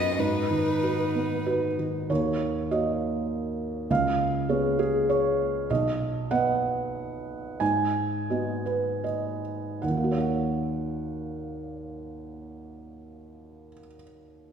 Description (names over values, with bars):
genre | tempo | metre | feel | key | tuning
neoclassical piano and strings | 74-103 BPM | 3/4 | rubato | Eb minor | A4 = 439 Hz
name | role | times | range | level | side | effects
warm violin | melody | 0.0-1.5 s | Cb5 to D#5 | -29 LUFS | left 3 dB | none
rich cello | second line | 0.0-1.8 s | B3 to Eb4 | -37 LUFS | right 3 dB | none
felt-muted upright piano | accompaniment | 0.0-14.5 s | B1 to Ab5 | -26 LUFS | right 2 dB | none
room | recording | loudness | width
wet scoring stage reverb, RT60 1.8 s | recorded in a church or concert hall | -24 LUFS | side -7 dB against mid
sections
0.0-2.1 A section; 2.1-9.8 B section; 9.8-14.5 C section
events
slowing down 4.8-9.8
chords
0.2 Abm7; 2.1 Ebm7; 3.9 Db7; 5.7 B; 7.6 Abm7; 9.8 Ebm7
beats
| 0.18 0.82 1.46 | 2.09 2.71 3.31 | 3.90 4.48 5.09 | 5.69 6.30 6.94 | 7.60 8.29 9.03 | 9.82 10.61 11.39 | 12.18 12.98 13.78